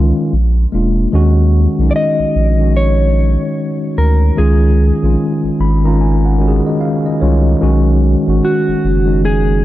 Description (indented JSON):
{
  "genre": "lo-fi hip hop",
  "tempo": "74 BPM",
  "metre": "4/4",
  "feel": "swing 60% on 16ths",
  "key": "Eb minor",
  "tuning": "A4 = 439 Hz",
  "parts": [
    { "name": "mellow tine electric piano", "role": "accompaniment", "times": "0.0-9.6 s", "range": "Eb3 to Cb6", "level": "-15 LUFS", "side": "left 1 dB", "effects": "fast stereo tremolo, cassette tape" },
    { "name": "saturated sub bass", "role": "bass", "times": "0.0-9.6 s", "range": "Fb1 to Eb2", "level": "-12 LUFS", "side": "equal", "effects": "none" },
    { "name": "mellow electric guitar", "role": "melody", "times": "1.9-9.6 s", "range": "F#4 to Eb5", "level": "-19 LUFS", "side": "equal", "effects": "tape echo" }
  ],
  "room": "light reverb, digital ambience",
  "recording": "dark, warm production",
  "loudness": "-11 LUFS",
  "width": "side -15 dB against mid",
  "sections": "0.0-9.6 A section",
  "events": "none",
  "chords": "0.3 Bb7; 1.1 Ebm7; 4.4 Db; 7.6 Badd9",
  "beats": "0.32 | 1.13 1.94 2.75 3.57 | 4.38 5.19 6.00 6.81 | 7.62 8.43 9.24"
}